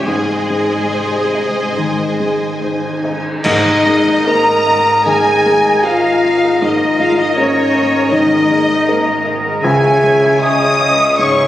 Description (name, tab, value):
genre	cinematic, emotional film score for orchestra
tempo	70-80 BPM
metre	4/4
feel	rubato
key	Ab major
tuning	A4 = 439 Hz
part	clear symphonic violin section	melody	0.0-11.5 s	Db5 to Eb6	-22 LUFS	left 2 dB	none
part	bright symphonic violin section	second line	0.0-11.5 s	C5 to Eb6	-23 LUFS	equal	none
part	clear symphonic viola section	accompaniment	0.0-11.5 s	Eb3 to Db5	-24 LUFS	right 1 dB	none
part	felt-muted upright piano	accompaniment	0.0-11.5 s	Db2 to Fb5	-21 LUFS	equal	none
part	concert harp	arpeggios	0.0-11.5 s	Ab2 to Db6	-26 LUFS	left 3 dB	none
part	rich symphonic cello section	bass	0.0-11.5 s	Ab2 to Ab3	-25 LUFS	right 1 dB	none
part	rich symphonic double bass section	bass	0.0-11.5 s	Ab1 to Db2	-31 LUFS	right 3 dB	none
part	mellow French horn section	sustained chords	0.1-11.5 s	C3 to Eb5	-16 LUFS	left 1 dB	none
part	cymbal swell, clash cymbals and concert bass drum	percussion	0.1-5.0 s	none	-23 LUFS	equal	none
part	clear clarinet	second line	3.4-11.5 s	Eb5 to Fb5	-22 LUFS	left 1 dB	none
part	mellow small flute group	second line	3.4-11.5 s	Db5 to Eb6	-18 LUFS	equal	none
part	warm oboe	second line	3.4-11.5 s	Ab5 to Bb5	-20 LUFS	equal	none
room	moderate concert hall reverb, RT60 1.9 s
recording	recorded on a phone in the room, studio reverb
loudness	-11 LUFS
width	side -13 dB against mid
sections	0.0-3.4 A section; 3.4-11.5 B section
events	band accent 3.4-4.3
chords	0.1 Ab; 3.4 Absus2; 9.6 Dbm